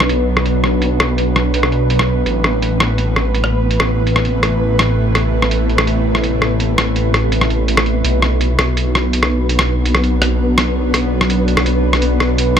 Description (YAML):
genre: half-time drum and bass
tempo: 166 BPM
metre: 4/4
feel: half-time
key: B phrygian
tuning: A4 = 440 Hz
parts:
  - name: bowed-like drone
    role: sustained chords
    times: 0.0-12.6 s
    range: C3 to B4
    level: -20 LUFS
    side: right 1 dB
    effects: built-in reverb
  - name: phased detuned saw bass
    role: bass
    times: 0.0-12.6 s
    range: A1 to B1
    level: -16 LUFS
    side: equal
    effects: phaser
  - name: boom bap sampler-style drum kit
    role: drums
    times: 0.0-12.6 s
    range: hi-hat, rim click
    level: -18 LUFS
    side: equal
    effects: low-pass filter on snare, small room reverb, low-pass filter on hats
  - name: flickering grainy texture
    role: texture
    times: 0.1-12.6 s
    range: B3 to B4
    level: -24 LUFS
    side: equal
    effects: built-in reverb
room: little or no reverb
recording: none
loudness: -13 LUFS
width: side -8 dB against mid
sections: 0.0-12.6 A section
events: none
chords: 0.0 Bm; 2.3 Amadd9; 8.0 Bm